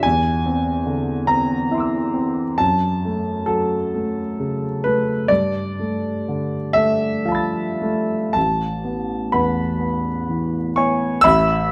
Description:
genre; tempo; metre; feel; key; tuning
classical, impressionist solo piano; 35-49 BPM (dotted quarters); 6/8; rubato; unclear; A4 = 438 Hz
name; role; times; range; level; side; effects
clear grand piano; solo; 0.0-11.7 s; A1 to A6; -20 LUFS; equal; none
room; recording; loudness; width
moderate recital hall reverb, RT60 1.5 s; close, detailed microphones; -20 LUFS; mono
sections
0.0-11.2 A section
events
none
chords
0.0 Eaug7; 2.6 F#m; 5.3 G9; 8.4 Aadd9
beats
| 0.04 1.29 | 2.60 3.93 | 5.29 6.74 | 8.36 9.78 | 11.22

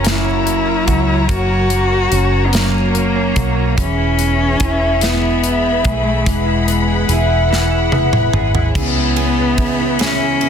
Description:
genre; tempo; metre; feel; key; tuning
six-eight pop ballad; 48 BPM (dotted quarters); 6/8; straight; unclear; A4 = 439 Hz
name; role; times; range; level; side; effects
rich cello; melody; 0.0-10.5 s; G#3 to F#4; -19 LUFS; left 2 dB; none
fingerpicked plugged-in steel-string acoustic guitar; accompaniment; 0.0-10.5 s; F#2 to E4; -20 LUFS; equal; double-tracked left and right
warm studio string section; sustained chords; 0.0-10.5 s; F#4 to B5; -23 LUFS; left 3 dB; none
direct-recorded clean electric guitar; arpeggios; 0.0-10.5 s; E3 to G#4; -26 LUFS; right 8 dB; analog chorus
vintage muted fingered electric bass; bass; 0.0-10.5 s; E1 to C#2; -19 LUFS; equal; none
modern studio drum kit; drums; 0.0-10.5 s; crash cymbal, hi-hat, kick drum, ride cymbal, snare drum, toms; -19 LUFS; equal; none
room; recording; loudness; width
light reverb, small room ambience; dense, heavily limited modern master; -13 LUFS; side -8 dB against mid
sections
0.0-8.8 A section; 8.8-10.5 B section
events
drum fill 7.5-8.8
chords
0.0 F#; 3.8 E; 8.8 C#m7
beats
0.05 | 1.29 2.54 | 3.78 5.02 | 6.26 7.51 | 8.75 9.99

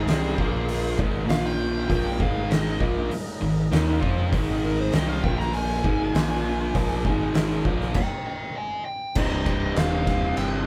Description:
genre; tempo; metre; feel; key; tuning
stoner and doom metal; 99 BPM; 4/4; straight; unclear; A4 = 444 Hz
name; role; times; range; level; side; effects
fuzz lead guitar; melody; 0.0-10.5 s; Ab4 to Bb5; -33 LUFS; equal; distortion
tonewheel organ; sustained chords; 0.0-10.7 s; Ab3 to Eb5; -39 LUFS; equal; slow rotary speaker, overdrive
fuzz guitar; riff; 0.0-10.7 s; C2 to F4; -28 LUFS; equal; distortion
growling picked electric bass; bass; 0.0-10.6 s; C1 to F2; -32 LUFS; equal; overdrive
oversized low-tuned drum kit; drums; 0.1-10.5 s; crash cymbal, hi-hat, kick drum, ride cymbal, snare drum; -29 LUFS; equal; none
room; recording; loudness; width
light reverb; band playing live in one room; -24 LUFS; mono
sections
0.0-9.2 A section; 9.2-10.7 B section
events
lead electric guitar solo 0.0-9.2; stop 8.0-9.2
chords
0.4 Bb5; 1.0 Ab5; 1.3 Bb5; 1.9 Ab5; 5.2 Bb5; 5.8 Ab5; 6.1 Bb5; 6.8 Ab5; 8.0 N.C.; 9.2 Cm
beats
0.08 0.69 1.30 | 1.90 2.51 3.12 3.72 | 4.33 4.94 5.54 6.15 | 6.75 7.36 7.96 8.57 | 9.17 9.78 10.38

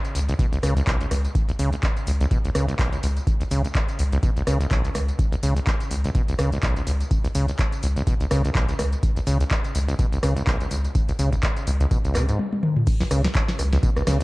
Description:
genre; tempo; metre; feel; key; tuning
acid house; 125 BPM; 4/4; swing 56% on 16ths; unclear; A4 = 440 Hz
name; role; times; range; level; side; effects
booming analog drum machine; drums; 0.0-14.2 s; crash cymbal, handclaps, hi-hat, rim click, snare drum, tambourine, toms; -28 LUFS; equal; none
acid bass, saw; riff; 0.1-14.2 s; B1 to C#3; -25 LUFS; equal; sidechain pumping, tape echo
saturated sub bass; bass; 0.1-14.2 s; C#2; -24 LUFS; equal; sidechain pumping
electronic kick drum; drums; 0.4-13.9 s; none; -23 LUFS; equal; none
deep dark ambient pad; texture; 13.6-14.2 s; F#4 to E5; -41 LUFS; right 3 dB; none
room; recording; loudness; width
light reverb; dark, warm production; -20 LUFS; side -22 dB against mid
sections
0.0-12.9 A section; 12.9-14.2 B section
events
drum fill 12.4-12.9; drop 12.9-14.2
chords
0.0 C#5; 12.9 C#m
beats
0.39 0.87 | 1.35 1.83 2.31 2.79 | 3.27 3.75 4.23 4.71 | 5.19 5.67 6.15 6.63 | 7.11 7.59 8.07 8.55 | 9.03 9.51 9.99 10.47 | 10.95 11.43 11.91 12.39 | 12.87 13.35 13.83

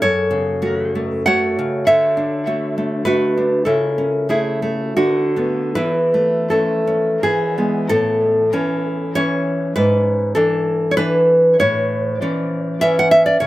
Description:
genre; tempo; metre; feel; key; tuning
romantic piece for solo classical guitar; 72-104 BPM; 3/4; rubato; A major; A4 = 441 Hz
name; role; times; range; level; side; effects
nylon-string guitar; solo; 0.0-13.5 s; F#2 to F#5; -15 LUFS; equal; tape echo
room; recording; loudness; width
light reverb; none; -15 LUFS; side -16 dB against mid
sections
0.0-7.9 A section; 7.9-13.5 B section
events
none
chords
0.0 F#m; 1.9 D; 3.7 A/C#; 5.0 Bm7/D; 5.8 A/E; 7.2 E; 7.9 A; 9.8 E7/G#; 11.6 A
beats
| 0.03 0.62 1.28 | 1.88 2.47 3.06 | 3.67 4.30 4.97 | 5.76 6.51 7.23 | 7.90 8.53 9.14 | 9.76 10.36 10.97 | 11.59 12.21 12.81 | 13.40

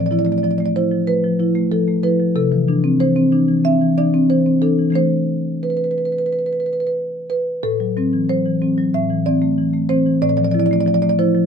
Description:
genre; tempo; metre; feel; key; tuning
classical, contemporary piece for solo marimba; 92 BPM; 4/4; straight; unclear; A4 = 442 Hz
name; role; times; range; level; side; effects
marimba with soft mallets; solo; 0.0-11.5 s; A2 to E5; -15 LUFS; equal; none
room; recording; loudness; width
light reverb; dark, warm production; -15 LUFS; side -7 dB against mid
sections
0.0-11.5 A section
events
none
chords
0.0 Dmadd9/A; 2.4 C69; 5.0 E7sus4; 7.6 Am6; 8.9 C69/A; 10.2 Dmadd9/A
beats
0.43 1.08 1.73 | 2.36 3.00 3.65 4.31 | 4.97 5.63 6.30 6.97 | 7.63 8.29 8.94 9.58 | 10.23 10.87

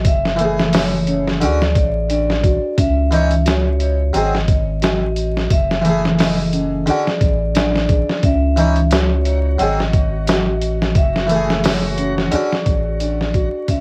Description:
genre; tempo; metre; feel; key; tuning
trip hop; 88 BPM; 4/4; swing 55% on 16ths; unclear; A4 = 444 Hz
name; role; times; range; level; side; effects
vibraphone with hard mallets; melody; 0.0-13.8 s; C#5 to E5; -25 LUFS; equal; cassette tape, tape echo
celesta; arpeggios; 0.0-13.8 s; C#4 to G#4; -27 LUFS; equal; cassette tape, analog delay
soft dub sub bass; bass; 0.0-13.8 s; F#1 to D2; -22 LUFS; equal; none
trip hop sampler-style drum kit; drums; 0.0-13.8 s; hi-hat, kick drum, snare drum; -20 LUFS; equal; cassette tape
harpsichord; accompaniment; 0.4-12.5 s; D3 to C#5; -22 LUFS; equal; harmonic tremolo, cassette tape, tape echo
backwards swelling texture; texture; 9.3-13.8 s; F#4; -35 LUFS; equal; built-in reverb, cassette tape
room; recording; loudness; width
little or no reverb; home recording on cassette, vinyl crackle; -17 LUFS; mono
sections
0.0-13.8 A section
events
fade-out 11.9-13.8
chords
0.1 F#m9; 1.4 Dmaj7; 2.8 C#madd9; 4.1 G#7; 5.5 F#m9; 6.9 Dmaj7; 8.2 C#madd9; 9.6 G#7; 11.0 F#m9; 12.3 Dmaj7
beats
| 0.05 0.73 1.42 2.10 | 2.78 3.46 4.14 4.82 | 5.50 6.19 6.87 7.55 | 8.23 8.91 9.60 10.28 | 10.96 11.64 12.32 13.01 | 13.69

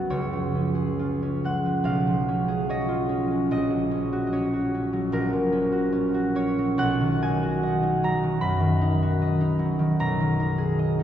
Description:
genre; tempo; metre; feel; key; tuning
classical, solo harp piece; 73 BPM; 4/4; uneven beats, rubato; F# major; A4 = 440 Hz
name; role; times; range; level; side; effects
concert harp; solo; 0.0-11.0 s; A#1 to B5; -22 LUFS; equal; none
room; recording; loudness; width
wet cathedral reverb, RT60 6.5 s; heard from further back in the room; -22 LUFS; side -10 dB against mid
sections
0.0-11.0 A section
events
none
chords
0.1 C#; 1.9 C#7/B; 3.5 F#/A#; 6.8 B; 10.0 G#m/B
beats
| 0.14 1.00 1.88 2.70 | 3.51 4.33 5.14 5.95 | 6.81 7.63 8.42 9.21 | 10.00 10.79

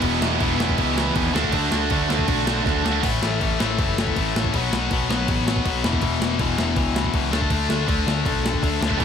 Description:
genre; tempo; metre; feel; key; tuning
punk rock; 161 BPM; 4/4; straight; unclear; A4 = 438 Hz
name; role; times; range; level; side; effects
heavy high-gain guitar; riff; 0.0-9.0 s; E2 to D4; -26 LUFS; right 1 dB; distortion
tight distorted guitar; riff; 0.0-9.0 s; E2 to D4; -24 LUFS; left 11 dB; distortion
tight distorted guitar; riff; 0.0-3.0, 9.0 s; A2 to F#4; -24 LUFS; right 17 dB; distortion
overdriven picked electric bass; bass; 0.0-9.0 s; E1 to D#2; -26 LUFS; equal; none
breakbeat sampler-style drum kit; drums; 0.0-9.0 s; crash cymbal, kick drum, snare drum; -25 LUFS; right 1 dB; none
room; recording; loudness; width
moderate small room reverb, RT60 0.5 s; none; -19 LUFS; side -8 dB against mid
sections
0.0-3.0 A section; 3.0-9.0 B section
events
drum fill 2.7-3.0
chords
0.0 E; 1.4 D; 3.0 A5; 4.5 B5; 5.8 E5; 7.3 D5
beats
| 0.04 0.41 0.79 1.16 | 1.54 1.91 2.29 2.66 | 3.04 3.41 3.79 4.16 | 4.53 4.91 5.28 5.65 | 6.02 6.39 6.77 7.14 | 7.51 7.88 8.25 8.62 | 8.99

